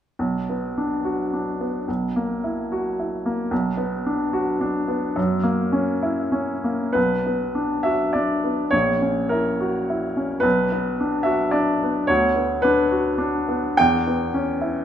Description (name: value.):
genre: classical, romantic character piece for solo piano.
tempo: 89-113 BPM.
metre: 3/4.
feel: rubato.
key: B minor.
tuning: A4 = 440 Hz.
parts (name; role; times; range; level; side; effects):
clear baby grand piano; solo; 0.2-14.8 s; A#1 to G5; -20 LUFS; equal; none.
room: wet recital hall reverb, RT60 1.4 s.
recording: none.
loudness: -20 LUFS.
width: side -9 dB against mid.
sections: 0.2-7.0 A section; 7.0-14.8 B section.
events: none.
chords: 0.2 Bm; 1.9 F#7/B; 3.5 Bm; 5.2 F#7; 7.0 Bm; 8.7 F#7/A#; 10.4 Bm; 12.1 Bm/D; 13.8 C#m7b5/E.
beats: | 0.18 0.76 1.32 | 1.88 2.43 2.97 | 3.51 4.05 4.61 | 5.17 5.73 6.33 | 6.96 7.55 8.14 | 8.72 9.31 9.89 | 10.45 11.00 11.54 | 12.09 12.63 13.18 | 13.77 14.32.